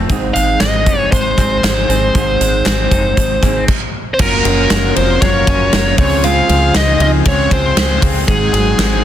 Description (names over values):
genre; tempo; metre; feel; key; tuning
jangly indie pop; 117 BPM; 4/4; straight; unclear; A4 = 441 Hz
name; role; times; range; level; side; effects
fingerpicked steel-string acoustic guitar; accompaniment; 0.0-9.0 s; Ab2 to Bb4; -22 LUFS; right 9 dB; none
electric guitar through a small old amp; arpeggios; 0.0-9.0 s; Gb2 to F4; -22 LUFS; left 6 dB; tremolo, analog delay
deep dub fingered electric bass; bass; 0.0-9.0 s; F1 to Db2; -18 LUFS; equal; none
big rock drum kit; drums; 0.1-8.9 s; crash cymbal, hi-hat, kick drum, ride cymbal, snare drum; -16 LUFS; equal; none
bluesy overdriven lead guitar; melody; 0.3-9.0 s; Ab4 to F5; -16 LUFS; equal; distortion
group handclap; percussion; 0.6-3.6 s; none; -28 LUFS; left 7 dB; none
vibraphone with medium mallets; second line; 4.1-9.0 s; Ab3 to F4; -24 LUFS; right 6 dB; none
combo organ; accompaniment; 4.2-9.0 s; Gb3 to C5; -24 LUFS; left 8 dB; none
room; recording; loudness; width
light reverb; dense, heavily limited modern master; -11 LUFS; side -11 dB against mid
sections
0.0-4.2 A section; 4.2-9.0 B section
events
stop 3.7-4.2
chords
0.1 Ab; 4.2 Gbmaj7; 6.0 Dbmaj7; 8.3 Ab7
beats
| 0.10 0.61 1.12 1.64 | 2.15 2.66 3.17 3.68 | 4.19 4.70 5.22 5.73 | 6.24 6.75 7.26 7.77 | 8.28 8.79